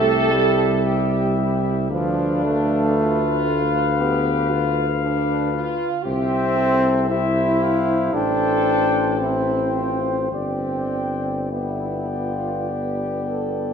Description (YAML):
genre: classical, hymn-like piece for brass band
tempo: 50-59 BPM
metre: 4/4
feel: rubato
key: C major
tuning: A4 = 440 Hz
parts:
  - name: mellow flugelhorn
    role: melody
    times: 0.0-13.7 s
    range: E5 to G5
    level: -26 LUFS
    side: left 8 dB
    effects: none
  - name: warm French horn section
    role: second line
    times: 0.0-13.7 s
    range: D4 to A4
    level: -26 LUFS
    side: right 4 dB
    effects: none
  - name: clear trombone section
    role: accompaniment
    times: 0.0-13.7 s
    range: G4 to D5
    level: -28 LUFS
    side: left 4 dB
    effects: none
  - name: mellow trombone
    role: accompaniment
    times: 0.0-13.7 s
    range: F3 to E4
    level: -23 LUFS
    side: right 3 dB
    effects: none
  - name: mellow tuba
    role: bass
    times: 0.0-13.7 s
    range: G1 to D2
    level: -24 LUFS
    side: left 1 dB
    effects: none
room: moderate concert hall reverb, RT60 1.9 s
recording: minimal, uncompressed stereo recording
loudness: -18 LUFS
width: side -7 dB against mid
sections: 0.0-13.7 A section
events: none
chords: 0.0 C; 1.9 Bdim/D; 6.1 C; 8.1 Am7; 10.3 G